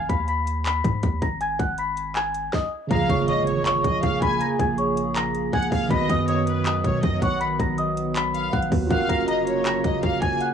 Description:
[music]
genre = hip hop, trap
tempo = 160 BPM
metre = 4/4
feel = half-time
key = Bb phrygian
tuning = A4 = 440 Hz
[part]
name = celesta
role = melody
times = 0.0-10.5 s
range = Db5 to Cb7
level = -26 LUFS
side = left 2 dB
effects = low-pass filter, cassette tape, analog delay
[part]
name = long sustained 808-style bass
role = bass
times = 0.0-10.4 s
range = F1 to B2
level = -30 LUFS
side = equal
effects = none
[part]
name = trap drum kit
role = drums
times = 0.1-10.5 s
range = handclaps, hi-hat, kick drum, snare drum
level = -26 LUFS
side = equal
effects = none
[part]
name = warm studio violin section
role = second line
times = 2.9-10.4 s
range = B4 to Ab5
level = -28 LUFS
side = equal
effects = cassette tape, analog delay
[part]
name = tine electric piano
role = accompaniment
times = 2.9-10.5 s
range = Db3 to B4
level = -26 LUFS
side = right 5 dB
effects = medium tremolo, low-pass filter, cassette tape
[part]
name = hollow soft pad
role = sustained chords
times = 3.1-10.5 s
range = Db3 to Ab4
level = -30 LUFS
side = equal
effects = chorus, cassette tape
[part]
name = impact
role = sound effects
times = 2.9-4.4 s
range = none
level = -32 LUFS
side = left 1 dB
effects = none
[sound]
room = digital ambience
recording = home recording on cassette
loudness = -20 LUFS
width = side -8 dB against mid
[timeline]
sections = 0.0-2.9 A section; 2.9-10.5 B section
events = break 0.0-2.9; impact 2.9-4.4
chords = 0.0 Abm; 2.9 Bbm7; 5.9 B; 8.9 Gbmaj7

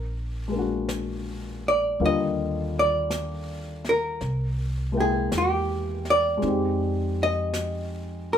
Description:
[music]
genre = jazz ballad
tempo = 54 BPM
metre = 4/4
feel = swing 66% on 8ths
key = Eb major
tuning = A4 = 437 Hz
[part]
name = archtop guitar, miked and amplified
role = melody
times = 0.0-8.4 s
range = G4 to Eb5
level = -24 LUFS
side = equal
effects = none
[part]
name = upright bass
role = bass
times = 0.0-8.4 s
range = Bb1 to F2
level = -30 LUFS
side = equal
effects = none
[part]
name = dark baby grand piano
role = accompaniment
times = 0.5-8.4 s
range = D3 to G5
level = -29 LUFS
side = left 3 dB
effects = none
[part]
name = jazz brush drum kit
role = drums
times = 0.9-8.4 s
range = brushed snare drum, hi-hat, snare drum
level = -37 LUFS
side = left 1 dB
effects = none
[sound]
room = moderate studio reverb, RT60 0.6 s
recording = minimal, uncompressed stereo recording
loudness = -23 LUFS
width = side -9 dB against mid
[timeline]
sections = 0.0-8.4 A section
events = none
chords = 0.0 Bbaug7; 2.0 Ebmaj9; 4.2 C7b13; 6.4 Fm7

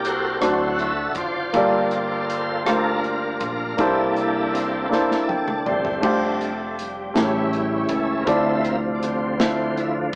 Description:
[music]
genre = slow gospel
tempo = 54 BPM (dotted quarters)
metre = 6/8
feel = straight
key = F major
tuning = A4 = 438 Hz
[part]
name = clear grand piano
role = accompaniment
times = 0.0-10.2 s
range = G2 to G5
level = -25 LUFS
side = equal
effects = none
[part]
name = bright tonewheel organ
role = sustained chords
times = 0.0-10.1 s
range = C3 to F#5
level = -26 LUFS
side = equal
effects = slow rotary speaker, overdrive, chorus vibrato
[part]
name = fingered electric bass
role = bass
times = 0.0-10.2 s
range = F1 to D2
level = -35 LUFS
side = equal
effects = none
[part]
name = modern studio drum kit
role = drums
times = 0.0-10.2 s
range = crash cymbal, hi-hat, kick drum, rim click, snare drum, toms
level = -31 LUFS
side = equal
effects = none
[sound]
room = wet studio reverb, RT60 0.8 s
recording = band playing live in one room, small speaker sound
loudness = -22 LUFS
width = mono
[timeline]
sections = 0.0-6.0 A section; 6.0-10.2 A section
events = tonewheel organ solo 0.0-6.0, 6.0-10.2; drum fill 4.9-6.0; grand piano fill 4.9-6.0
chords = 0.4 D7; 1.5 Gm9; 3.8 C13; 6.0 F69; 7.1 A7; 8.3 Dm9

